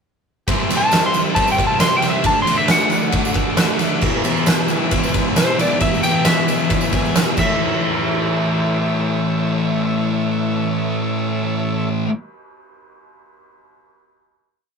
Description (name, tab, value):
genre	garage rock duo or trio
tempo	135 BPM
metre	4/4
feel	straight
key	unclear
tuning	A4 = 440 Hz
part	combo organ	sustained chords	0.5-11.9 s	E4 to G#5	-28 LUFS	right 1 dB	none
part	thick fuzz guitar	riff	0.5-12.1 s	E2 to D4	-20 LUFS	left 1 dB	distortion
part	oversized low-tuned drum kit	drums	0.5-7.5 s	crash cymbal, kick drum, ride cymbal, snare drum	-19 LUFS	right 1 dB	none
part	tambourine	percussion	0.5-7.8 s	none	-34 LUFS	right 3 dB	none
part	electric slide guitar	melody	0.8-11.9 s	C5 to C6	-21 LUFS	equal	none
room	wet booth ambience, RT60 0.2 s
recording	rough rehearsal-room recording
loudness	-15 LUFS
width	side -5 dB against mid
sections	0.5-7.6 pre-chorus; 7.6-11.1 final hit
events	transistor combo organ fill 6.7-7.6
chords	0.5 C; 2.3 D; 4.0 E; 7.4 A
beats	| 0.47 0.92 1.36 1.81 | 2.25 2.70 3.14 3.59 | 4.04 4.48 4.93 5.38 | 5.82 6.27 6.71 7.16 | 7.60 8.05 8.49 8.93 | 9.37 9.81 10.26 10.70